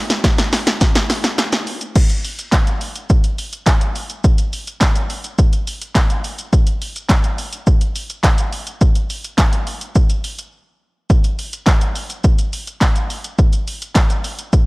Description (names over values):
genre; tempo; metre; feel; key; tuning
pop; 105 BPM; 4/4; straight; none; none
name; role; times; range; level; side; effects
punchy analog drum machine; drums; 0.1-14.7 s; crash cymbal, handclaps, hi-hat, kick drum, shaker, snare drum; -14 LUFS; equal; none
group handclap; percussion; 0.2-14.1 s; none; -31 LUFS; right 1 dB; none
room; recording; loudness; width
digital ambience; dry, gritty hardware recording; -15 LUFS; side -25 dB against mid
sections
0.0-2.0 A section; 2.0-14.7 B section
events
build-up 0.0-2.0; drum fill 0.0-2.0; drop 2.0-14.7; break 10.5-11.1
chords
none